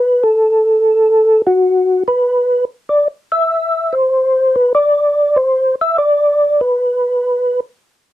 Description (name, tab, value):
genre	jazz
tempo	97 BPM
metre	4/4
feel	swing 69% on 8ths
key	unclear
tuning	A4 = 440 Hz
part	percussive tonewheel organ	solo	0.0-7.6 s	F#4 to E5	-11 LUFS	equal	slow rotary speaker, chorus vibrato
room	light reverb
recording	dry, close 1970s-style studio recording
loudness	-12 LUFS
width	side -14 dB against mid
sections	0.0-8.1 A section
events	none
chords	none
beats	| 0.40 1.01 1.63 2.25 | 2.87 3.49 4.11 4.73 | 5.35 5.96 6.58 7.20